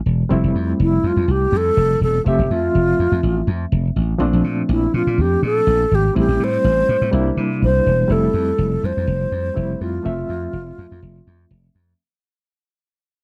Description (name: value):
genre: disco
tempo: 123 BPM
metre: 4/4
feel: straight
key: F major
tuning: A4 = 439 Hz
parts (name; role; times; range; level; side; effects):
- slap bass; bass; 0.1-11.9 s; E1 to C3; -21 LUFS; equal; none
- barky reed electric piano; accompaniment; 0.3-12.0 s; F3 to E5; -26 LUFS; equal; overdrive, fast tremolo
- mellow alto flute; melody; 0.8-11.5 s; E4 to C5; -22 LUFS; equal; none
room: light reverb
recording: dry, close 1970s-style studio recording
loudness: -18 LUFS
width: mono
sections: 0.0-8.1 A section; 8.1-12.0 B section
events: fade-out 8.1-12.0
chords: 0.3 Fmaj7; 4.2 Bbmaj7; 6.2 Am7; 7.1 C7; 8.1 Fmaj7